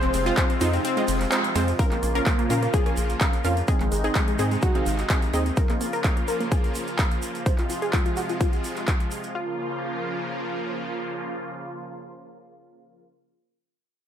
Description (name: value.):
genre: progressive house.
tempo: 127 BPM.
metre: 4/4.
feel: straight.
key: Bb minor.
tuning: A4 = 440 Hz.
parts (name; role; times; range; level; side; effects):
wide unison pluck; melody; 0.0-1.3 s; C5; -33 LUFS; right 1 dB; none.
filtered supersaw swell; sustained chords; 0.0-13.0 s; C3 to F4; -30 LUFS; equal; sidechain pumping.
analog pluck; arpeggios; 0.0-13.0 s; Ab3 to C5; -30 LUFS; left 2 dB; chorus, sidechain pumping, dub echo.
round analog bass; bass; 0.0-5.5 s; F1 to Bb2; -26 LUFS; equal; sidechain pumping.
big-room dance drum kit; drums; 0.0-9.3 s; handclaps, hi-hat, ride cymbal; -30 LUFS; equal; overdrive.
tube shaker; percussion; 0.0-9.3 s; none; -41 LUFS; right 5 dB; none.
wide unison pluck; stabs; 0.3-5.4 s; Ab3 to Ab5; -28 LUFS; right 2 dB; cassette tape, sidechain pumping, dub echo.
electronic kick drum; drums; 0.4-9.0 s; none; -23 LUFS; equal; overdrive.
room: light reverb, digital ambience.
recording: none.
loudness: -22 LUFS.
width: side -9 dB against mid.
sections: 0.0-1.8 A section; 1.8-9.4 B section; 9.4-13.1 C section.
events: drop 0.0-1.8; kick drops out 0.8-1.8; band accent 1.3; filter sweep on synth pluck 1.8-9.4.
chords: 0.0 Fm; 1.8 Bbm; 3.7 Ab; 5.6 Bbm; 7.5 Fm; 9.4 Bbm.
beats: 0.37 0.85 1.32 | 1.79 2.26 2.74 3.21 | 3.68 4.15 4.63 5.10 | 5.57 6.04 6.52 6.99 | 7.46 7.93 8.41 8.88 | 9.35 9.82 10.30 10.77 | 11.24 11.71 12.19 12.66.